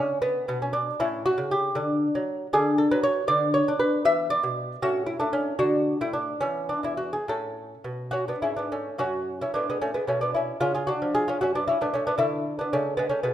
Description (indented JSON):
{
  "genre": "classical, baroque-style dance for lute",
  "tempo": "68-81 BPM (dotted quarters)",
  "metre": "6/8",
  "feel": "rubato",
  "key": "A major, F# minor from 9.0 s",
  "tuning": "A4 = 444 Hz",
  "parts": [
    { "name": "lute", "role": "solo", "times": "0.0-13.3 s", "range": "E2 to E5", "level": "-23 LUFS", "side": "equal", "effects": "none" }
  ],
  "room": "moderate recital hall reverb, RT60 1.3 s",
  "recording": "minimal, uncompressed stereo recording",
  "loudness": "-23 LUFS",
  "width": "side -11 dB against mid",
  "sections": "0.0-9.0 A section; 9.0-13.3 A section",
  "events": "none",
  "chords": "0.0 D5; 1.0 A; 1.8 D; 3.3 Bm/D; 4.1 E5; 4.8 A; 5.6 D; 6.4 E5; 7.3 A; 9.0 F#m; 10.6 C#; 11.4 F#m; 12.2 D5",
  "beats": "0.21 | 0.99 1.77 | 2.54 3.29 | 4.05 4.83 | 5.61 6.42 | 7.27 8.13 | 8.99 9.81 | 10.60 11.39 | 12.19 12.98"
}